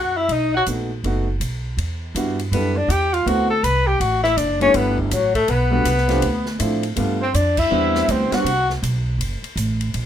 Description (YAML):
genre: jazz, small-group swing and bop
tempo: 162 BPM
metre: 4/4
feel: swing 64% on 8ths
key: E minor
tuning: A4 = 440 Hz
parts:
  - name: warm tenor saxophone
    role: melody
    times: 0.0-8.7 s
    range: D3 to B4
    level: -20 LUFS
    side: left 4 dB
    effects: none
  - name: clear trumpet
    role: second line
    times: 0.0-8.7 s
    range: D4 to B5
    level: -26 LUFS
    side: right 4 dB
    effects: none
  - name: upright bass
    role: bass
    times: 0.0-10.1 s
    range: F#1 to A2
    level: -22 LUFS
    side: right 1 dB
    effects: none
  - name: swinging big-band drum kit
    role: drums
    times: 0.3-10.0 s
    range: crash cymbal, hi-hat, kick drum, ride cymbal, snare drum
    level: -30 LUFS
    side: equal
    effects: none
  - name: warm grand piano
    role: accompaniment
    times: 0.7-8.4 s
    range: F3 to A4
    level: -23 LUFS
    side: right 2 dB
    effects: none
room: moderate studio ambience, RT60 0.5 s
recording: minimal, uncompressed stereo recording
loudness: -17 LUFS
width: side -10 dB against mid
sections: 0.0-1.8 A section; 1.8-10.1 B section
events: band accent 7.5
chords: 0.3 B7; 1.8 Em9; 3.3 D13; 4.7 Gmaj7; 6.2 Dm7; 7.0 G9; 7.7 Cmaj9; 9.2 F#(#9)